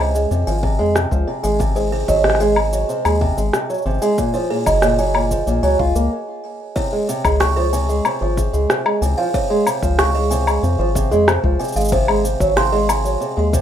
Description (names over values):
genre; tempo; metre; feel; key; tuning
folktronica; 93 BPM; 4/4; straight; Db major; A4 = 441 Hz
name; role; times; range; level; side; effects
fingerpicked old ladder-braced acoustic guitar; arpeggios; 0.0-13.6 s; Bb2 to F4; -20 LUFS; right 1 dB; ping-pong delay, plate reverb
round analog bass; bass; 0.0-13.6 s; Gb1 to F2; -20 LUFS; left 1 dB; none
electronic shaker, rim click and woodblock; drums; 0.2-13.6 s; none; -20 LUFS; left 2 dB; none
buzzing kalimba; second line; 0.5-13.0 s; Ab4 to Db6; -22 LUFS; right 3 dB; digital delay, plate reverb
electronic kick drum; drums; 0.6-13.6 s; none; -25 LUFS; left 1 dB; none
room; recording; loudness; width
moderate studio reverb, RT60 0.6 s; rough home demo mix; -15 LUFS; side -10 dB against mid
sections
0.0-6.8 A section; 6.8-13.6 B section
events
stop 6.1-6.8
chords
0.0 Dbmaj7; 1.6 Ab7; 4.2 Gbmaj7; 6.8 Dbmaj7; 11.9 Ab7